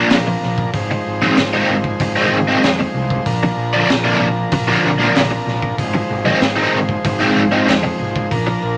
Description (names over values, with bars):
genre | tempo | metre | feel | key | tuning
psychedelic rock | 95 BPM | 4/4 | straight | unclear | A4 = 440 Hz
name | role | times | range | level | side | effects
overdriven combo organ | sustained chords | 0.0-8.8 s | F3 to C5 | -26 LUFS | equal | none
cranked stack guitar | riff | 0.0-8.5 s | Bb2 to Eb4 | -18 LUFS | equal | overdrive, rotary speaker
fuzz fingered electric bass | bass | 0.0-8.8 s | Ab1 to F2 | -26 LUFS | equal | overdrive
hand-pumped harmonium | drone | 0.0-8.8 s | Bb2 to Bb3 | -29 LUFS | equal | none
crunchy breakbeat drum kit | drums | 0.1-8.5 s | hi-hat, kick drum, snare drum | -24 LUFS | equal | none
congas | percussion | 0.3-8.1 s | none | -32 LUFS | equal | none
room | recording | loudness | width
moderate studio reverb, RT60 0.6 s | none | -17 LUFS | mono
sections
0.0-8.8 A section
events
none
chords
0.0 Bb; 0.7 Ab; 3.3 Bb; 5.8 Ab